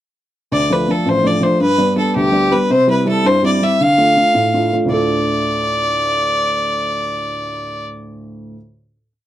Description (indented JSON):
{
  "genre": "celtic folk",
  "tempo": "109 BPM (dotted quarters)",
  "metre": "6/8",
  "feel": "straight",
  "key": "D dorian",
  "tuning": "A4 = 438 Hz",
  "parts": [
    { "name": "clear fiddle", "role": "melody", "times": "0.5-7.9 s", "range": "G4 to F5", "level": "-16 LUFS", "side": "left 1 dB", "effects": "none" },
    { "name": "dark upright piano", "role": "accompaniment", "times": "0.5-8.6 s", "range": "A1 to A4", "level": "-17 LUFS", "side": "equal", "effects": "none" }
  ],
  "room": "light reverb",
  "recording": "dry, close 1970s-style studio recording",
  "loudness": "-13 LUFS",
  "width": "side -12 dB against mid",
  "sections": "0.5-4.9 A section; 4.9-7.1 final chord",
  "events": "none",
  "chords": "0.5 Dm; 1.6 G; 2.7 C; 3.8 Dm"
}